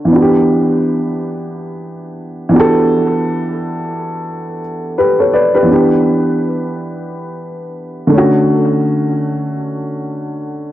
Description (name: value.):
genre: hip hop.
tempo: free time.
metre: none.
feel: none.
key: E dorian.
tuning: A4 = 444 Hz.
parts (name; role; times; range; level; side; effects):
dark upright piano; solo; 0.0-10.7 s; D3 to D5; -13 LUFS; equal; cassette tape, analog delay.
room: moderate small room reverb, RT60 0.6 s.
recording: dry, gritty hardware recording.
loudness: -12 LUFS.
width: side -14 dB against mid.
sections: 0.0-5.7 A section; 5.7-10.7 B section.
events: none.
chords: 0.1 Em7; 2.5 Em11; 5.7 Em7; 8.1 Dmaj7.